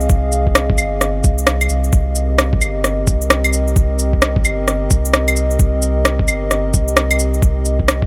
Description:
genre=future garage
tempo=131 BPM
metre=4/4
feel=swing 62% on 16ths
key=C minor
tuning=A4 = 439 Hz
part: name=dark analog pad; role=sustained chords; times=0.0-8.1 s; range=C4 to F5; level=-24 LUFS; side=equal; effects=chorus, sidechain pumping
part: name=soft dub sub bass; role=bass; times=0.0-8.1 s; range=G1 to C2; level=-21 LUFS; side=equal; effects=sidechain pumping
part: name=electronic shaker, cabasa, rim click and claves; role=drums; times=0.0-8.0 s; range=none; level=-18 LUFS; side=equal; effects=overdrive
part: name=electronic kick drum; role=drums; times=0.1-8.1 s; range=none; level=-17 LUFS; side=equal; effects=none
room=little or no reverb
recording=none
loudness=-16 LUFS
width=mono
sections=0.0-8.1 A section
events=none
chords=0.0 Fm9; 1.9 Cm7

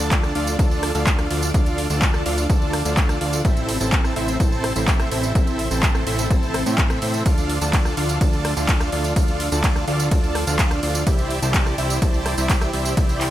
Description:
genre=EDM, festival progressive house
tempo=126 BPM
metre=4/4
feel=straight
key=D minor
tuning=A4 = 440 Hz
part: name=dense compressed supersaw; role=riff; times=0.0-13.3 s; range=C4 to A5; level=-24 LUFS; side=right 1 dB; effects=sidechain pumping, dub echo
part: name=fat analog bass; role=bass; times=0.0-13.3 s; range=A1 to A2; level=-25 LUFS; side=equal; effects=sidechain pumping
part: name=big-room dance drum kit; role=drums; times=0.0-13.3 s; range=handclaps, hi-hat, ride cymbal, rim click, tambourine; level=-26 LUFS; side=right 1 dB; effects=overdrive, studio reverb
part: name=electronic kick drum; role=drums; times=0.1-13.1 s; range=none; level=-19 LUFS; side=equal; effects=studio reverb
room=little or no reverb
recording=none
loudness=-18 LUFS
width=side -13 dB against mid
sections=0.0-13.3 A section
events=none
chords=0.0 Dm; 3.4 Am; 7.3 Dm; 11.1 Cadd9

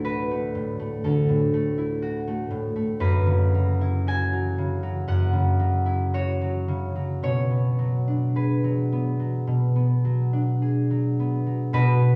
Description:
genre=classical, solo harp piece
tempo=52-62 BPM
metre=4/4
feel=rubato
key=B dorian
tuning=A4 = 440 Hz
part: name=concert harp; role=solo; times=0.0-12.2 s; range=D2 to G#5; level=-24 LUFS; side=equal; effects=none
room=wet recital hall reverb, RT60 1.3 s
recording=heard from further back in the room, small room ambience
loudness=-24 LUFS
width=mono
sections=0.0-11.7 A section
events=none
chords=0.0 Dadd9; 3.0 F#7sus4; 7.2 Bm6

